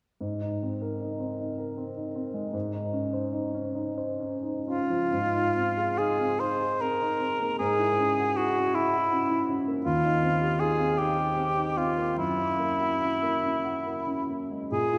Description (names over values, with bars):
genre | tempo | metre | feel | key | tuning
classical, impressionist duo for cor anglais and grand piano | 41-55 BPM (dotted quarters) | 6/8 | rubato | Ab major | A4 = 440 Hz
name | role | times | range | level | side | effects
warm baby grand piano | accompaniment | 0.2-15.0 s | Eb2 to C5 | -32 LUFS | equal | none
mellow cor anglais | melody | 4.7-15.0 s | Fb4 to C5 | -28 LUFS | equal | none
room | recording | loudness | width
wet church reverb, RT60 2.9 s | recorded in a church or concert hall | -28 LUFS | mono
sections
0.2-5.1 A section; 5.1-15.0 B section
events
none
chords
0.2 Abadd9; 2.5 Dbmaj7sus2/Ab; 5.1 Ab69; 7.6 Gb7sus2/Ab; 9.8 Eb69; 12.2 Gb7